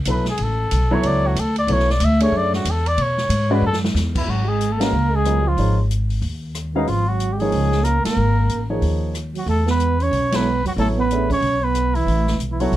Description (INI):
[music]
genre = modal jazz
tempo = 185 BPM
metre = 4/4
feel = swing 62% on 8ths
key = unclear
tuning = A4 = 441 Hz
[part]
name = upright bass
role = bass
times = 0.0-12.8 s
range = G#1 to B2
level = -20 LUFS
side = equal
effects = none
[part]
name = trumpet with cup mute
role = melody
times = 0.1-12.8 s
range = D#4 to E5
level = -23 LUFS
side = left 1 dB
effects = none
[part]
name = dark baby grand piano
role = accompaniment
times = 0.1-12.7 s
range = E#3 to E#5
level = -23 LUFS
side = equal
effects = none
[part]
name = open jazz drum kit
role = drums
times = 0.1-12.8 s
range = crash cymbal, hi-hat, kick drum, ride cymbal, rim click, snare drum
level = -29 LUFS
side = right 1 dB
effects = none
[part]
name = breathy trombone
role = second line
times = 4.1-12.8 s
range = D#3 to C#4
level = -24 LUFS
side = right 6 dB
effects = none
[sound]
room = light reverb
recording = dark, warm production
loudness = -17 LUFS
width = side -14 dB against mid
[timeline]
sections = 0.0-4.3 A section; 4.3-12.8 B section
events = muted trumpet solo 0.0-4.3; drum fill 3.6-4.0; band accent 4.8, 8.0, 10.3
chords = 0.0 E13sus4; 4.3 G#13sus4; 9.5 Esus4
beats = 0.06 | 0.39 0.71 1.04 1.36 | 1.68 2.01 2.33 2.65 | 2.98 3.30 3.63 3.95 | 4.28 4.60 4.92 5.25 | 5.57 5.90 6.22 6.55 | 6.87 7.20 7.52 7.85 | 8.17 8.50 8.82 9.15 | 9.47 9.80 10.12 10.45 | 10.77 11.10 11.42 11.75 | 12.07 12.40 12.72